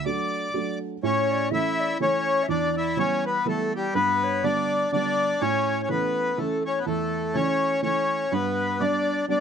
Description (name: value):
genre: celtic folk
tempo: 124 BPM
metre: 3/4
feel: swing 58% on 8ths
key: unclear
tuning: A4 = 437 Hz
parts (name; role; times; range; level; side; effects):
- accordion; melody; 0.0-9.4 s; G3 to D5; -24 LUFS; left 2 dB; none
- dark baby grand piano; accompaniment; 0.0-9.4 s; E2 to D4; -28 LUFS; right 5 dB; none
- bright wooden flute; second line; 1.0-9.4 s; G4 to E5; -30 LUFS; left 5 dB; none
room: light reverb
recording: close, detailed microphones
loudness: -22 LUFS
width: side -7 dB against mid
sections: 0.0-1.0 A section; 1.0-9.4 A section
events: none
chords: 0.0 D; 1.0 A; 2.5 Em; 3.9 G; 5.4 A; 8.3 G